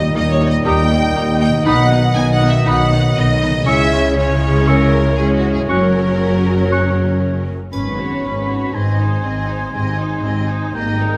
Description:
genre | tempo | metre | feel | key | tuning
cinematic, heroic adventure film score | 119 BPM | 4/4 | straight | unclear | A4 = 438 Hz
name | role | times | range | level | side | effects
rich symphonic violin section | melody | 0.0-11.2 s | F#4 to G#5 | -28 LUFS | equal | none
clear symphonic violin section | second line | 0.0-11.2 s | Eb4 to G#5 | -29 LUFS | equal | none
mellow French horn section | sustained chords | 0.0-11.2 s | F#3 to F#4 | -28 LUFS | equal | none
warm trombone section | sustained chords | 0.0-7.5 s | A#2 to G#3 | -24 LUFS | equal | none
concert harp | arpeggios | 0.0-11.2 s | F#2 to Ab5 | -28 LUFS | equal | none
warm trumpet section | stabs | 0.0-7.4 s | C#5 to D#5 | -25 LUFS | equal | none
rich symphonic double bass section | bass | 0.0-11.2 s | F#1 to D#2 | -22 LUFS | equal | none
warm symphonic cello section | bass | 0.0-11.2 s | D#2 to C#3 | -23 LUFS | equal | none
clear symphonic viola section | accompaniment | 0.2-11.2 s | F#3 to F#4 | -27 LUFS | equal | none
clear clarinet | second line | 0.7-11.2 s | C#4 to G4 | -29 LUFS | equal | none
mellow hollow silver concert flute | second line | 0.7-11.2 s | Bb5 to F#6 | -29 LUFS | equal | none
warm oboe | second line | 0.7-11.2 s | G5 to C#6 | -28 LUFS | equal | none
timpani | percussion | 1.7-2.4 s | none | barely audible | none | none
triangle | percussion | 7.7-8.7 s | none | -43 LUFS | equal | none
room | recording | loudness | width
moderate scoring stage reverb, RT60 2.0 s | dark, warm production | -16 LUFS | mono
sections
0.0-7.7 A section; 7.7-11.2 B section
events
none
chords
0.0 D#; 1.7 B; 3.7 C#m; 5.7 F#; 7.7 Bsus2/Ab; 8.7 Ab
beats
0.16 0.66 1.16 | 1.66 2.16 2.67 3.17 | 3.67 4.17 4.68 5.19 | 5.70 6.21 6.72 7.23 | 7.74 8.24 8.75 9.25 | 9.75 10.25 10.75

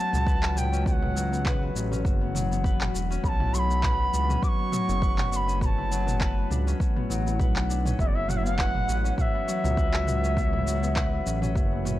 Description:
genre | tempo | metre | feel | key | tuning
organic downtempo | 101 BPM | 4/4 | swing 55% on 16ths | B minor | A4 = 441 Hz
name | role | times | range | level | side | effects
bright reedy bansuri | melody | 0.0-12.0 s | D5 to D6 | -30 LUFS | right 2 dB | analog delay
ethereal airy pad | sustained chords | 0.0-12.0 s | D3 to D5 | -36 LUFS | equal | ensemble chorus, built-in reverb, phaser, sidechain pumping
Celtic harp | arpeggios | 0.0-12.0 s | F#3 to B4 | -32 LUFS | left 5 dB | analog delay
smooth synth bass | bass | 0.1-12.0 s | E1 to C#2 | -27 LUFS | equal | transformer saturation, sidechain pumping
organic electronic drum kit | drums | 0.1-12.0 s | handclaps, shaker, toms | -33 LUFS | equal | overdrive
electronic kick drum | drums | 0.3-11.7 s | none | -26 LUFS | equal | overdrive
room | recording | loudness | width
little or no reverb | dry, gritty hardware recording | -23 LUFS | side -15 dB against mid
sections
0.0-12.0 A section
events
none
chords
0.0 F#m7; 3.2 Bm7; 8.0 F#m7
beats
0.27 | 0.86 1.46 2.05 2.65 | 3.24 3.83 4.43 5.02 | 5.62 6.21 6.80 7.40 | 7.99 8.59 9.18 9.77 | 10.37 10.96 11.55

